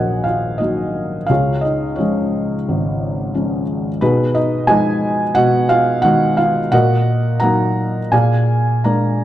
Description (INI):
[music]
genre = classical, lyrical solo piano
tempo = 80-92 BPM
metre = 4/4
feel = rubato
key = Eb minor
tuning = A4 = 440 Hz
[part]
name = felt-muted upright piano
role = solo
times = 0.0-9.2 s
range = Ab1 to Bb5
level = -14 LUFS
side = equal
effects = none
[sound]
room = moderate recital hall reverb, RT60 1.5 s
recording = dark, warm production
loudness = -14 LUFS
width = side -13 dB against mid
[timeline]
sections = 0.0-9.2 A section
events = none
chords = 0.0 Ebm; 1.3 Db; 4.0 Fm7b5/Cb; 6.7 Ebm/Bb; 8.1 Bb7